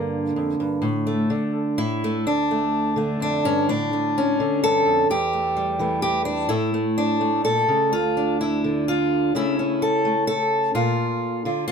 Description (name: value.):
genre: folk, solo fingerstyle acoustic guitar.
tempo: 127 BPM.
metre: 3/4.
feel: rubato.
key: D harmonic minor.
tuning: A4 = 440 Hz.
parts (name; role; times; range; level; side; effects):
fingerpicked steel-string acoustic guitar; solo; 0.0-11.7 s; D2 to A4; -20 LUFS; equal; none.
room: light reverb.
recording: close, detailed microphones.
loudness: -20 LUFS.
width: side -6 dB against mid.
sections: 0.0-2.3 A section; 2.3-11.7 B section.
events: none.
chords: 0.0 Gm; 0.8 D5/A; 1.8 N.C.; 2.3 Dm; 3.7 Asus4; 5.1 Emadd11; 6.5 A; 7.9 N.C.; 9.3 A/C#; 10.7 Bb.